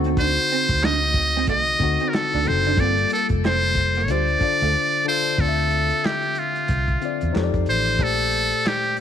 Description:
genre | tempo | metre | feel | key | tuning
R&B, neo-soul | 92 BPM | 4/4 | swing 61% on 16ths | D minor | A4 = 439 Hz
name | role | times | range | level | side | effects
tine electric piano | accompaniment | 0.0-9.0 s | Bb2 to E5 | -26 LUFS | left 11 dB | none
vintage muted fingered electric bass | bass | 0.0-8.5 s | F1 to F2 | -24 LUFS | right 1 dB | none
warm soul drum kit | drums | 0.0-9.0 s | handclaps, hi-hat, kick drum, snare drum | -26 LUFS | right 1 dB | none
electric guitar through a small old amp | second line | 0.1-4.7 s | G3 to D4 | -29 LUFS | right 15 dB | lush chorus
trumpet with metal mute | melody | 0.2-9.0 s | F4 to Eb5 | -21 LUFS | right 1 dB | none
room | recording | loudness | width
light reverb | 1960s-style stereo with parts hard left and right | -18 LUFS | side -9 dB against mid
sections
0.0-5.4 A section; 5.4-9.0 B section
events
drums muted 4.7-5.4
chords
0.0 D7b9; 2.8 Gm9; 4.1 Dm7; 5.4 Dm9; 7.3 F13; 8.0 Bbmaj13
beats
| 0.17 0.82 1.47 2.13 | 2.78 3.43 4.08 4.74 | 5.39 6.04 6.69 7.34 | 8.00 8.65

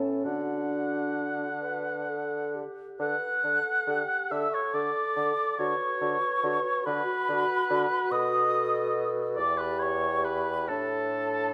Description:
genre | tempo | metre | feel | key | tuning
classical, slow romantic movement for wind quintet | 43-48 BPM (dotted quarters) | 6/8 | rubato | D major | A4 = 439 Hz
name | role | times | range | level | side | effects
mellow clarinet | accompaniment | 0.0-11.5 s | D4 to B4 | -38 LUFS | equal | none
warm French horn | accompaniment | 0.0-11.5 s | C#4 to B4 | -36 LUFS | equal | none
mellow bassoon | bass | 0.0-11.5 s | E2 to D3 | -36 LUFS | equal | none
warm oboe | second line | 0.2-11.5 s | A4 to F#5 | -35 LUFS | equal | none
mellow silver concert flute | melody | 3.0-11.5 s | A5 to F#6 | -31 LUFS | equal | none
room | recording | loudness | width
moderate recital hall reverb, RT60 1.8 s | none | -28 LUFS | mono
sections
0.0-3.0 A section; 3.0-11.5 A section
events
none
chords
0.3 D; 5.6 Bm/D; 8.1 B7; 9.4 Em; 10.7 Asus4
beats
| 0.25 1.62 | 3.00 4.31 | 5.60 6.87 | 8.12 9.38 | 10.69

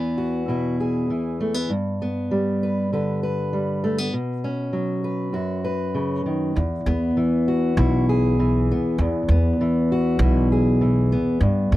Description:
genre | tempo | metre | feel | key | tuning
indie folk with a building arrangement | 99 BPM | 4/4 | straight | unclear | A4 = 440 Hz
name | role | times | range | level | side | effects
fingerpicked steel-string acoustic guitar | accompaniment | 0.0-11.8 s | E2 to B4 | -21 LUFS | equal | none
upright bass | bass | 6.6-11.8 s | B1 to G2 | -20 LUFS | equal | none
room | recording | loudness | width
light reverb | dry, close 1970s-style studio recording | -20 LUFS | side -16 dB against mid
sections
0.0-6.6 A section; 6.6-11.8 A section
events
none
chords
0.0 E; 1.7 G; 4.1 Bsus2; 6.6 E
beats
0.49 1.10 | 1.71 2.31 2.92 3.53 | 4.13 4.74 5.35 5.96 | 6.56 7.17 7.77 8.38 | 8.99 9.59 10.20 10.80 | 11.41

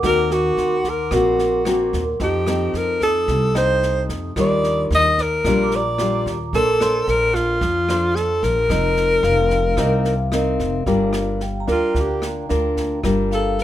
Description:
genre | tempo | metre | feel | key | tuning
bossa nova | 111 BPM | 4/4 | straight | unclear | A4 = 439 Hz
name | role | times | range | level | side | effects
nylon-string guitar | accompaniment | 0.0-13.6 s | Bb2 to C5 | -22 LUFS | left 1 dB | none
vibraphone with medium hard mallets | accompaniment | 0.0-13.6 s | F5 to Eb6 | -29 LUFS | equal | none
upright bass | bass | 0.0-13.6 s | F1 to F2 | -24 LUFS | equal | none
open jazz drum kit | drums | 0.0-13.6 s | kick drum, rim click, snare drum | -30 LUFS | equal | none
breathy alto saxophone | melody | 0.1-13.6 s | F4 to Eb5 | -19 LUFS | left 1 dB | none
room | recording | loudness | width
light reverb | minimal, uncompressed stereo recording | -17 LUFS | side -12 dB against mid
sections
0.0-10.9 A section; 10.9-13.6 B section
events
alto saxophone solo 10.9-13.6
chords
0.0 Ebm6; 2.2 F7; 4.4 Ebmaj9; 6.5 Bbmaj9; 8.7 F7sus4; 10.9 Gm7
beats
| 0.03 0.57 1.12 1.66 | 2.20 2.74 3.28 3.82 | 4.37 4.91 5.45 5.99 | 6.53 7.07 7.62 8.16 | 8.70 9.24 9.78 10.32 | 10.87 11.41 11.95 12.49 | 13.03 13.58

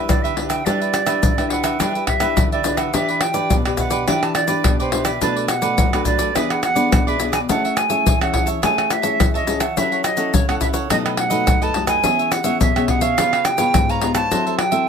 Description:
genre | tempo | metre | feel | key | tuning
samba and choro | 106 BPM | 4/4 | straight | unclear | A4 = 440 Hz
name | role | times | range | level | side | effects
silver concert flute | melody | 0.0-14.9 s | C5 to A#5 | -21 LUFS | right 3 dB | none
cavaquinho | accompaniment | 0.0-14.9 s | D4 to A5 | -25 LUFS | right 7 dB | none
nylon-string guitar | accompaniment | 0.0-14.9 s | F#2 to B4 | -24 LUFS | left 6 dB | none
tube shaker, surdo, pandeiro and tamborim | percussion | 0.1-14.9 s | none | -19 LUFS | left 1 dB | none
room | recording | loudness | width
moderate small room reverb, RT60 0.5 s | close, detailed microphones | -16 LUFS | side -7 dB against mid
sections
0.0-2.9 A section; 2.9-14.9 B section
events
none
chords
0.0 G6; 2.9 Em7; 5.2 Bm7; 6.4 E7; 7.5 Amaj7; 9.8 F#m7; 10.9 B7; 12.0 E6; 13.2 C#7; 14.3 F#m7b5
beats
0.09 | 0.66 1.23 1.80 2.37 | 2.94 3.51 4.08 4.65 | 5.22 5.79 6.35 6.92 | 7.49 8.06 8.63 9.20 | 9.77 10.33 10.90 11.47 | 12.04 12.61 13.18 13.74 | 14.31 14.88

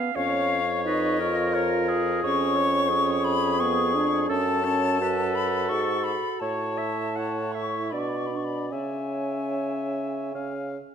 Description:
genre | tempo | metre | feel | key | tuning
classical, slow romantic movement for wind quintet | 71-90 BPM | 3/4 | rubato | F# minor | A4 = 440 Hz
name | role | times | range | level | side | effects
clear clarinet | accompaniment | 0.0-10.7 s | G#4 to F#5 | -31 LUFS | right 8 dB | none
mellow French horn | accompaniment | 0.0-10.8 s | B3 to F#4 | -30 LUFS | equal | none
silver concert flute | melody | 0.1-10.7 s | C#5 to C#6 | -29 LUFS | left 6 dB | none
warm oboe | second line | 0.2-10.8 s | G#4 to E#5 | -31 LUFS | left 4 dB | none
mellow bassoon | bass | 0.2-10.8 s | E#2 to C#3 | -30 LUFS | right 3 dB | none
room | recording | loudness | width
moderate scoring stage reverb, RT60 1.6 s | none | -23 LUFS | side -8 dB against mid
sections
0.0-10.9 A section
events
none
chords
0.2 C#/E#; 2.2 C#7/E#; 4.3 F#m; 6.4 F#m/A; 7.9 Bmadd9; 8.7 C#5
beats
| 0.16 0.86 1.54 | 2.24 2.92 3.59 | 4.30 5.00 5.70 | 6.41 7.16 7.92 | 8.71 9.55 10.34

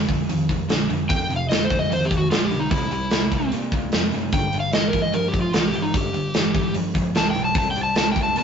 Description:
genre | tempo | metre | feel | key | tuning
blues rock power trio and southern rock | 149 BPM | 4/4 | straight | C mixolydian | A4 = 440 Hz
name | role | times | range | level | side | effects
overdriven electric guitar | riff | 0.0-8.4 s | F2 to Bb3 | -26 LUFS | equal | none
vintage muted picked electric bass | bass | 0.0-8.4 s | F1 to C3 | -31 LUFS | left 1 dB | none
big rock drum kit | drums | 0.1-8.4 s | hi-hat, kick drum, snare drum | -22 LUFS | right 1 dB | none
overdriven slide guitar | melody | 1.1-8.4 s | Eb4 to A5 | -24 LUFS | left 1 dB | none
room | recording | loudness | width
moderate studio reverb, RT60 0.6 s | rough rehearsal-room recording, tube saturation, nothing above 7.7 kHz | -19 LUFS | side -7 dB against mid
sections
0.0-8.4 A section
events
none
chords
0.0 F5; 2.7 C7; 4.3 G7(no3); 7.6 C5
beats
0.29 0.69 | 1.09 1.50 1.90 2.31 | 2.71 3.12 3.52 3.92 | 4.33 4.73 5.13 5.54 | 5.94 6.34 6.75 7.15 | 7.56 7.96 8.36

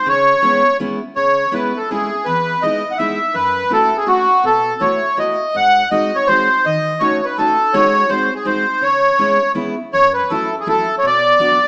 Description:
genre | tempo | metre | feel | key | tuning
musette waltz | 164 BPM | 3/4 | straight | C# minor | A4 = 440 Hz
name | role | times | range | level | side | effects
accordion | melody | 0.0-11.7 s | F#4 to F#5 | -16 LUFS | equal | light tremolo tuning
fingerpicked steel-string acoustic guitar | accompaniment | 0.1-11.6 s | E2 to F#4 | -26 LUFS | equal | none
room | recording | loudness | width
moderate large studio reverb, RT60 1.1 s | band playing live in one room, small speaker sound | -16 LUFS | mono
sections
0.0-1.2 A section; 1.2-9.9 A section; 9.9-11.7 B section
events
none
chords
0.1 C#m7; 2.3 Emaj7; 3.3 F#m7; 4.4 B7sus4; 5.5 G#7; 6.6 D#m7b5; 7.7 G#7sus4; 8.1 G#7; 8.8 C#m7; 9.9 F#m7; 11.0 Bm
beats
| 0.06 0.42 0.79 | 1.16 1.53 1.90 | 2.26 2.63 2.99 | 3.35 3.71 4.08 | 4.44 4.81 5.17 | 5.54 5.91 6.28 | 6.65 7.01 7.37 | 7.73 8.09 8.45 | 8.82 9.19 9.56 | 9.93 10.30 10.66 | 11.03 11.39

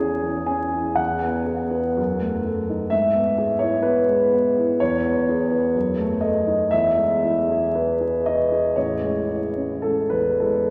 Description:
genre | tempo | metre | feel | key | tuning
classical, romantic character piece for solo piano | 49-66 BPM | 2/4 | rubato | E major from 4.8 s | A4 = 440 Hz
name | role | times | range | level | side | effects
warm concert grand piano | solo | 0.0-10.7 s | A1 to G#5 | -22 LUFS | equal | none
room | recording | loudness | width
wet cathedral reverb, RT60 4.2 s | vinyl crackle | -22 LUFS | mono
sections
0.0-10.7 A section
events
none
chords
0.0 C#m/E; 1.0 E; 2.0 D#dim/F#; 2.9 E/G#; 4.8 E; 5.8 D#dim/F#; 6.7 E; 8.8 Amaj7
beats
0.02 | 0.99 1.99 | 2.93 3.85 | 4.80 5.75 | 6.72 7.74 | 8.76 9.82

